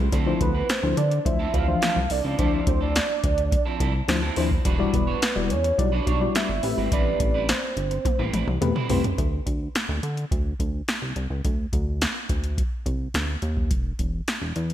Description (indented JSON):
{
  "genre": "early-eighties boogie funk",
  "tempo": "106 BPM",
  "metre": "4/4",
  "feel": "straight",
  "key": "D dorian",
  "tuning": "A4 = 440 Hz",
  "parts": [
    { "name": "electric guitar at the edge of break-up", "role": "riff", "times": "0.0-9.1 s", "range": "F3 to C#5", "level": "-33 LUFS", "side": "right 6 dB", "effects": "lush chorus" },
    { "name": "chorused synth bass", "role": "bass", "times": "0.0-14.7 s", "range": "E1 to D3", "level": "-26 LUFS", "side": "equal", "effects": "none" },
    { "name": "mellow FM electric piano", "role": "accompaniment", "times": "0.1-9.0 s", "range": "E3 to D5", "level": "-27 LUFS", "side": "left 5 dB", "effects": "chorus" },
    { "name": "electro analog drum machine", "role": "drums", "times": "0.1-14.7 s", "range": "hi-hat, kick drum, snare drum, toms", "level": "-25 LUFS", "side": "equal", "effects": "none" },
    { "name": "warm velvety synth lead", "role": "melody", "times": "0.4-8.9 s", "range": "B4 to F5", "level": "-28 LUFS", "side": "right 3 dB", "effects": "chorus, tremolo" }
  ],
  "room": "moderate lush hall reverb, RT60 1.7 s, digital ambience",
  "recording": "bright 1980s-style digital production",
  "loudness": "-22 LUFS",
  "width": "side -11 dB against mid",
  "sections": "0.0-9.2 A section; 9.2-14.7 B section",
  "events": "drum fill 8.0-9.2",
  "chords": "0.1 Dm9; 4.7 Em9; 6.6 Am9; 9.2 N.C.; 13.7 E5"
}